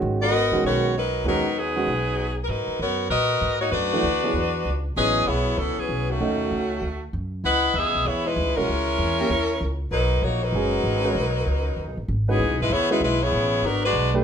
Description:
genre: jazz, big band swing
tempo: 194 BPM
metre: 4/4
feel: swing 63% on 8ths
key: G# minor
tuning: A4 = 442 Hz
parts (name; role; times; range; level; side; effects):
- warm grand piano; accompaniment; 0.0-1.9, 3.9-14.2 s; D#3 to B4; -26 LUFS; right 3 dB; none
- upright bass; bass; 0.0-14.2 s; F#1 to A#2; -27 LUFS; equal; none
- clear saxophone section; melody; 0.2-14.1 s; D#3 to F#5; -22 LUFS; left 1 dB; none
room: moderate large studio reverb, RT60 0.8 s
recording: minimal, uncompressed stereo recording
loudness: -21 LUFS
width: side -8 dB against mid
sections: 0.0-2.5 A section; 2.5-12.4 A section; 12.4-14.2 B section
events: none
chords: 0.0 G#m9; 3.7 Bm7; 4.3 Esus2; 5.0 Amaj9; 6.2 D#m7b5; 6.8 D; 7.4 C#m9; 8.7 A#m7b5; 9.3 D#5; 9.9 G#m9; 12.4 C#m9; 13.6 G#m7b5

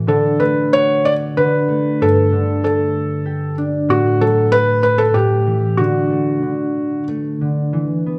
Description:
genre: children's music, lullaby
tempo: 94 BPM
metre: 3/4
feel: rubato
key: D major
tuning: A4 = 440 Hz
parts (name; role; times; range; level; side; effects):
- concert harp; accompaniment; 0.0-8.2 s; G2 to G4; -20 LUFS; equal; none
- felt-muted upright piano; melody; 0.1-7.0 s; F#4 to D5; -19 LUFS; equal; none
room: wet recital hall reverb, RT60 1.5 s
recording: none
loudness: -17 LUFS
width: mono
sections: 0.0-7.7 A section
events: none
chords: 0.1 D; 2.0 Gsus2; 3.9 F#madd11/A; 5.2 A5; 5.8 D

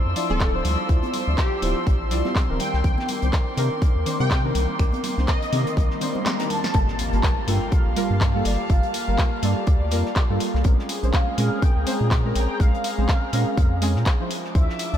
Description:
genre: deep house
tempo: 123 BPM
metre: 4/4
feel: swing 57% on 16ths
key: G minor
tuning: A4 = 441 Hz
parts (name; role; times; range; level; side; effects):
- warbly tape-like pad; sustained chords; 0.0-6.7 s; Bb4 to E6; -33 LUFS; left 3 dB; chorus, built-in reverb, phaser, sidechain pumping
- deep mellow chord stab; stabs; 0.0-15.0 s; D3 to D5; -28 LUFS; right 1 dB; chorus, sidechain pumping, diffuse ambient delay
- dark studio string section; texture; 0.0-15.0 s; F3 to E6; -32 LUFS; left 1 dB; sidechain pumping
- round analog bass; bass; 0.1-15.0 s; D1 to C3; -23 LUFS; equal; sidechain pumping
- house drum kit; drums; 0.2-14.9 s; finger snaps, handclaps, hi-hat, snare drum; -30 LUFS; left 1 dB; none
- warm soul drum kit; drums; 0.2-15.0 s; hi-hat, snare drum; -41 LUFS; left 3 dB; sidechain pumping on hats, high-pass filter on hats, high-pass filter on snare, high-pass filter on room
- plucky unison lead; melody; 0.3-6.0 s; G4 to G5; -33 LUFS; left 1 dB; ensemble chorus, vintage 12-bit sampler grit, analog delay
- congas; percussion; 0.3-6.6 s; none; -34 LUFS; right 1 dB; none
- electronic kick drum; drums; 0.4-14.7 s; none; -20 LUFS; equal; none
- swell and impact; sound effects; 5.9-8.7 s; none; -34 LUFS; left 1 dB; none
- mellow horn-like synth lead; melody; 6.3-15.0 s; D5 to Bb5; -30 LUFS; equal; phaser, ensemble chorus, ping-pong delay
room: moderate cathedral reverb, RT60 7.0 s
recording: dreamy mix soaked in reverb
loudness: -19 LUFS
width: side -10 dB against mid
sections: 0.0-6.7 A section; 6.7-15.0 B section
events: swell 5.9-6.7; drum fill 6.3-6.7; drop 6.7-15.0; impact 6.7-8.7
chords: 0.0 Dm9; 2.6 Cm9; 6.7 Gm9; 10.6 Bbm9; 14.3 Dm9

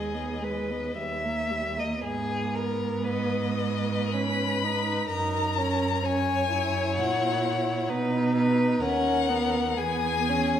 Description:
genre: classical, slow romantic movement for string quartet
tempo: 53-66 BPM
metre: 3/4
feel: rubato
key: G# minor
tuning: A4 = 440 Hz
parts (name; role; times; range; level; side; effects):
- rich violin; melody; 0.0-10.6 s; D#5 to B5; -30 LUFS; left 7 dB; none
- rich violin; second line; 0.0-10.6 s; G#4 to E5; -30 LUFS; left 3 dB; none
- warm viola; accompaniment; 0.0-10.6 s; G3 to E4; -30 LUFS; right 2 dB; none
- rich cello; bass; 0.0-10.6 s; D#2 to B2; -30 LUFS; right 4 dB; none
room: wet recital hall reverb, RT60 1.7 s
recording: none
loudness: -24 LUFS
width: side -9 dB against mid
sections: 0.0-2.0 A section; 2.0-10.6 B section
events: none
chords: 0.0 G#m/D#; 1.0 D#; 2.0 G#m; 5.1 F#; 7.9 B; 9.8 E

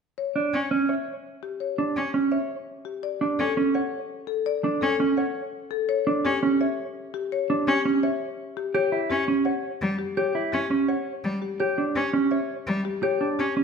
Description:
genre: classical, minimalist pattern music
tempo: 168 BPM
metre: 4/4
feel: straight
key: unclear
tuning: A4 = 439 Hz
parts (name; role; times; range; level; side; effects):
- marimba with medium hard mallets; melody; 0.2-13.6 s; G4 to F#5; -29 LUFS; left 8 dB; none
- mellow electric guitar; arpeggios; 0.4-13.6 s; C#4 to C#5; -24 LUFS; right 3 dB; none
- rich cello; accompaniment; 0.5-13.5 s; G3 to C#4; -28 LUFS; left 1 dB; none
room: wet recital hall reverb, RT60 1.5 s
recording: none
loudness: -23 LUFS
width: side -6 dB against mid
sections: 0.2-13.6 A section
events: none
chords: 0.2 N.C.; 8.7 Em6; 11.6 G5

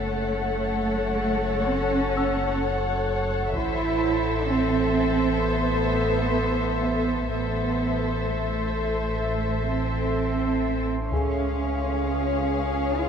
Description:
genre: cinematic, suspense film score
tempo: 64 BPM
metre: 4/4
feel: straight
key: unclear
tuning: A4 = 440 Hz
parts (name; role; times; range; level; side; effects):
- muted studio violin section; melody; 0.0-13.1 s; E5 to F#5; -33 LUFS; left 5 dB; none
- muted studio violin section; second line; 0.0-13.1 s; G#4 to C#5; -29 LUFS; left 5 dB; none
- deep dark ambient pad; sustained chords; 0.0-13.1 s; G#4 to C6; -31 LUFS; equal; chorus, built-in reverb
- muted studio cello section; bass; 0.0-13.1 s; A3 to E#4; -27 LUFS; right 4 dB; none
- muted studio double bass section; bass; 0.0-13.1 s; F#1 to C#2; -32 LUFS; right 4 dB; none
- pure sine sub bass; drone; 0.0-13.1 s; F#1 to C#2; -31 LUFS; left 1 dB; none
- felt-muted upright piano; texture; 0.0-13.1 s; G#4 to E6; -38 LUFS; left 1 dB; none
- taiko ensemble; drums; 3.5-5.4, 11.1-12.9 s; none; -33 LUFS; left 1 dB; none
room: moderate concert hall reverb, RT60 2.2 s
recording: none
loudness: -22 LUFS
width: side -7 dB against mid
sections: 0.0-13.1 A section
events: none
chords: 0.0 F#m; 3.5 Am; 11.1 C#

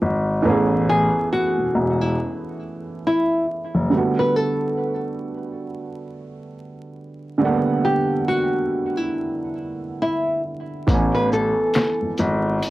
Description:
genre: lo-fi hip hop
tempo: 69 BPM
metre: 4/4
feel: swing 60% on 16ths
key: unclear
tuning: A4 = 440 Hz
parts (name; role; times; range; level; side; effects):
- nylon-string guitar; melody; 0.0-12.7 s; E4 to B4; -22 LUFS; left 1 dB; low-pass filter, cassette tape, analog delay
- dark upright piano; accompaniment; 0.0-12.7 s; D3 to G#5; -24 LUFS; right 3 dB; low-pass filter
- dark grand piano; bass; 0.0-3.9, 10.9-12.6 s; E1 to A1; -21 LUFS; left 1 dB; transformer saturation
- lo-fi sampler-style drum kit; drums; 10.9-12.7 s; finger snaps, hi-hat, kick drum, shaker, snare drum; -21 LUFS; left 1 dB; overdrive, cassette tape
room: light reverb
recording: home recording on cassette, vinyl crackle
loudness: -19 LUFS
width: side -16 dB against mid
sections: 0.0-12.7 A section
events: break 3.9-10.9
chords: 0.0 Amaj9; 3.9 Gmaj9; 10.9 Amaj9

